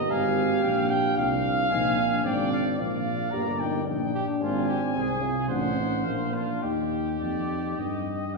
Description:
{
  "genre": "classical, brass quintet",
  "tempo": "110 BPM",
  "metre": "4/4",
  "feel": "uneven beats, rubato",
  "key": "Eb major",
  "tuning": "A4 = 438 Hz",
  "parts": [
    { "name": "warm trumpet", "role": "melody", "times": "0.0-8.4 s", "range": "D5 to Bb5", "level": "-34 LUFS", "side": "left 4 dB", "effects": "none" },
    { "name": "clear flugelhorn", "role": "second line", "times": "0.0-8.4 s", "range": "F4 to G5", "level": "-29 LUFS", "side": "right 2 dB", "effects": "none" },
    { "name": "clear trombone", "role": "accompaniment", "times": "0.0-8.4 s", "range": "Bb3 to F4", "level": "-35 LUFS", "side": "left 2 dB", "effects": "none" },
    { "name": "mellow French horn", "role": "accompaniment", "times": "0.0-8.4 s", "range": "Bb3 to G4", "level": "-31 LUFS", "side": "left 2 dB", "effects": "none" },
    { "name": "mellow tuba", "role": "bass", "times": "0.0-8.4 s", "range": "G1 to G2", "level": "-28 LUFS", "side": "right 2 dB", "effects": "none" }
  ],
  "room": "wet scoring stage reverb, RT60 1.6 s",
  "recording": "heard from further back in the room, small room ambience",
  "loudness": "-24 LUFS",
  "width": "side -2 dB against mid",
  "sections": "0.0-8.4 A section",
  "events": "none",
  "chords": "0.1 Fm/Ab; 2.3 Bb7/Ab; 3.3 Eb/G; 4.4 Ab(#11); 5.5 Adim7; 6.1 Bb; 6.6 Eb",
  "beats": "| 0.11 0.64 1.18 1.71 | 2.26 2.80 3.33 3.87 | 4.42 4.96 5.50 6.06 | 6.63 7.21 7.79 8.36"
}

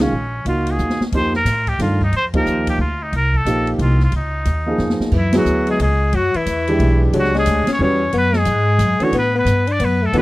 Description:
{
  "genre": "modal jazz",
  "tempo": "180 BPM",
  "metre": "3/4",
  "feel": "swing 63% on 8ths",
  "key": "F# minor from 5.1 s",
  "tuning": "A4 = 440 Hz",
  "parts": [
    { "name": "trumpet with straight mute", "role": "melody", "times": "0.0-10.2 s", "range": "Db4 to D5", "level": "-21 LUFS", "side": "equal", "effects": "tape echo" },
    { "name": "clear grand piano", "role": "accompaniment", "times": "0.0-10.2 s", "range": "Eb3 to C#5", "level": "-20 LUFS", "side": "right 1 dB", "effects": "none" },
    { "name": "upright bass", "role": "bass", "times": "0.0-10.2 s", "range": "Bb1 to A2", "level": "-19 LUFS", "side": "equal", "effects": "none" },
    { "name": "open jazz drum kit", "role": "drums", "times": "0.0-10.2 s", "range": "crash cymbal, hi-hat, kick drum, ride cymbal, snare drum", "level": "-26 LUFS", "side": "equal", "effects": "none" },
    { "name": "clear alto saxophone", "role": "second line", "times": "5.1-10.2 s", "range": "E3 to D4", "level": "-21 LUFS", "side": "left 4 dB", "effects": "none" }
  ],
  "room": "little or no reverb",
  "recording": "dry, close 1970s-style studio recording",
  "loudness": "-15 LUFS",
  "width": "side -18 dB against mid",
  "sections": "0.0-5.1 A section; 5.1-10.2 B section",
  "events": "drum fill 0.8-1.1, 4.8-5.1; band accent 2.3, 5.3",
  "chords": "0.0 Eb9sus4; 1.1 F9sus4; 4.1 Dbadd9; 5.1 F#9sus4; 9.1 A9sus4",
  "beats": "| 0.12 0.45 0.79 | 1.12 1.46 1.79 | 2.12 2.46 2.79 | 3.13 3.46 3.79 | 4.13 4.46 4.80 | 5.13 5.46 5.80 | 6.13 6.47 6.80 | 7.13 7.47 7.80 | 8.13 8.47 8.80 | 9.13 9.47 9.80 | 10.13"
}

